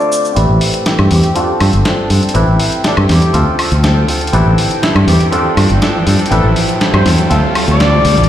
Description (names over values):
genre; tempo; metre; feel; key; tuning
filtered disco house; 121 BPM; 4/4; straight; A minor; A4 = 438 Hz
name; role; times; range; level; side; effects
mellow horn section; melody; 0.0-8.3 s; D4 to D5; -19 LUFS; left 1 dB; low-pass filter
clav; accompaniment; 0.0-8.3 s; D3 to E5; -19 LUFS; equal; phaser, vintage 12-bit sampler grit, low-pass filter
warm studio violin section; sustained chords; 0.0-8.3 s; G5 to A5; -24 LUFS; left 3 dB; low-pass filter
direct-recorded clean electric guitar; riff; 0.0-8.3 s; E3 to A4; -20 LUFS; right 1 dB; low-pass filter
dusty soul sampler-style drum kit; drums; 0.0-8.3 s; hi-hat, shaker, snare drum, woodblock; -18 LUFS; left 1 dB; small room ambience
modern bright fingered electric bass; bass; 0.4-8.3 s; G1 to G2; -11 LUFS; equal; low-pass filter
riser; sound effects; 2.3-8.3 s; none; -21 LUFS; right 1 dB; none
room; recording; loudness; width
light reverb; played on a big sound system in a bare room, large studio reverb; -9 LUFS; side -11 dB against mid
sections
0.4-8.3 A section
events
build-up 0.4-8.3; filter sweep 0.4-8.3; riser 2.3-8.3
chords
0.4 Am7; 1.4 G9sus4; 2.3 Am7; 3.3 Dm7; 4.3 Am7; 5.3 G9sus4; 6.3 Am7; 7.3 Dm7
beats
| 0.37 0.86 1.36 1.85 | 2.35 2.85 3.34 3.84 | 4.33 4.83 5.33 5.82 | 6.32 6.81 7.31 7.80